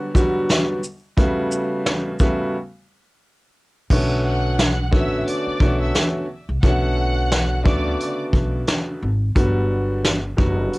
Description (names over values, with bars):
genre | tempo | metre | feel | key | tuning
hip hop, boom-bap hip-hop | 88 BPM | 4/4 | swing 57% on 16ths | B minor | A4 = 440 Hz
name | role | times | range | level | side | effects
warm upright piano | accompaniment | 0.0-10.8 s | C#3 to F#4 | -22 LUFS | equal | cassette tape, high-pass filter, low-pass filter
vintage brush drum kit | drums | 0.1-10.8 s | crash cymbal, hi-hat, kick drum, shaker, snare drum | -20 LUFS | equal | cassette tape
upright bass | bass | 3.9-10.7 s | F#1 to D2 | -22 LUFS | equal | transformer saturation
warm studio violin section | melody | 4.2-8.2 s | D5 to F#6 | -28 LUFS | equal | high-pass filter, low-pass filter
room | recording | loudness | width
light reverb | home recording on cassette | -18 LUFS | side -22 dB against mid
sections
0.0-3.9 A section; 3.9-10.8 B section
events
break 0.0-3.9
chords
0.0 Gmaj7; 1.2 A13; 3.9 Bm9; 9.4 Gmaj7